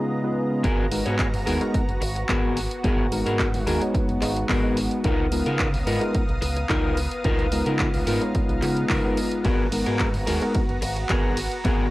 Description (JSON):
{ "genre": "nu-disco, nu disco", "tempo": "109 BPM", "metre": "4/4", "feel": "straight", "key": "G# dorian", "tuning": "A4 = 440 Hz", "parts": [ { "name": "tine electric piano", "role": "accompaniment", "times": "0.0-10.6 s", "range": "C#3 to C#5", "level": "-26 LUFS", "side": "equal", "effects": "overdrive, analog chorus, cassette tape, tape echo" }, { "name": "lush unison pad", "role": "sustained chords", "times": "0.0-11.9 s", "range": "C#3 to D#6", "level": "-31 LUFS", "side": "equal", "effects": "chorus, sidechain pumping, cassette tape" }, { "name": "electric guitar at the edge of break-up", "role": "riff", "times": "0.6-11.9 s", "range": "B3 to C#5", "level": "-27 LUFS", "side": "left 2 dB", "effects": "wide subtle chorus, cassette tape" }, { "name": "fingered electric bass with an envelope filter", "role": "bass", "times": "0.6-11.9 s", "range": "F#1 to C#3", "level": "-29 LUFS", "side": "equal", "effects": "none" }, { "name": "electronic kick drum", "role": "drums", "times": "0.6-11.8 s", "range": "none", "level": "-26 LUFS", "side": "equal", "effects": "small room ambience" }, { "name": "house drum kit", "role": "drums", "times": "0.6-11.8 s", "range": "handclaps, hi-hat, ride cymbal", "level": "-31 LUFS", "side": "equal", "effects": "small room ambience" } ], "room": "light reverb", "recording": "home recording on cassette", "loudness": "-21 LUFS", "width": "side -18 dB against mid", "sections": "0.6-11.9 A section", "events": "drop 0.6-11.9", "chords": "0.0 C#13; 0.6 G#m9; 5.0 C#13; 9.4 G#m9", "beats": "0.09 | 0.64 1.19 1.74 2.29 | 2.84 3.39 3.94 4.49 | 5.04 5.59 6.14 6.70 | 7.25 7.80 8.35 8.90 | 9.45 10.00 10.55 11.10 | 11.65" }